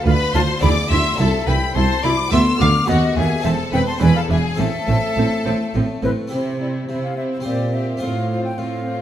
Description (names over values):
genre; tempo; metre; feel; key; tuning
classical, baroque-style concerto movement with solo episodes; 106 BPM; 3/4; straight; A minor; A4 = 442 Hz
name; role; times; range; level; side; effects
rich studio violin section; melody; 0.0-9.0 s; C5 to F6; -27 LUFS; left 3 dB; none
wooden flute; melody; 0.0-9.0 s; B4 to D6; -25 LUFS; left 2 dB; none
rich symphonic violin section; second line; 0.0-9.0 s; E4 to F5; -26 LUFS; left 3 dB; none
harpsichord; accompaniment; 0.0-9.0 s; C2 to C5; -27 LUFS; left 1 dB; none
rich chamber viola section; accompaniment; 0.1-9.0 s; B3 to F4; -24 LUFS; equal; none
dark chamber double bass section; bass; 0.1-6.1 s; E1 to D#2; -22 LUFS; right 2 dB; none
rich studio cello section; bass; 0.1-9.0 s; C2 to C3; -22 LUFS; right 2 dB; none
room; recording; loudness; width
wet recital hall reverb, RT60 1.4 s; none; -16 LUFS; side -11 dB against mid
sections
0.0-6.3 A section; 6.3-9.0 B section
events
none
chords
0.0 Bdim/D; 0.6 E7/D; 1.2 Am/C; 2.3 Bm7b5/D; 2.9 B7/D#; 3.4 Am/E; 4.0 E7; 4.6 Am; 6.3 C; 7.5 C7/Bb; 8.0 F/A